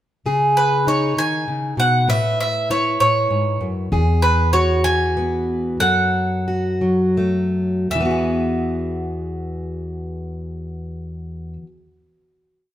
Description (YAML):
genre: indie folk with a building arrangement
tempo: 52-66 BPM (dotted quarters)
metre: 6/8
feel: straight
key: E major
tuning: A4 = 440 Hz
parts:
  - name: fingerpicked plugged-in steel-string acoustic guitar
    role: accompaniment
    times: 0.3-11.8 s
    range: E2 to B4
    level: -20 LUFS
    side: left 1 dB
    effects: none
  - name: bowl-back mandolin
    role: melody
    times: 0.6-11.5 s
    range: B4 to G#5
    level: -19 LUFS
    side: right 2 dB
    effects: none
  - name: upright bass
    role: bass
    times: 3.9-5.8 s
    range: E2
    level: -19 LUFS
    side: equal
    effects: none
room: wet stone room reverb, RT60 1.2 s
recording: band playing live in one room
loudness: -17 LUFS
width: side -12 dB against mid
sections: 0.3-7.9 verse; 7.9-12.5 final chord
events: slowing down 3.9-7.9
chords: 0.3 C#sus2; 2.1 Aadd9; 3.9 Eadd9; 5.8 F#m; 7.9 Eadd9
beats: | 0.26 1.17 | 2.09 3.00 | 3.92 4.84 | 5.80 6.82 | 7.91 9.06 | 10.21 11.35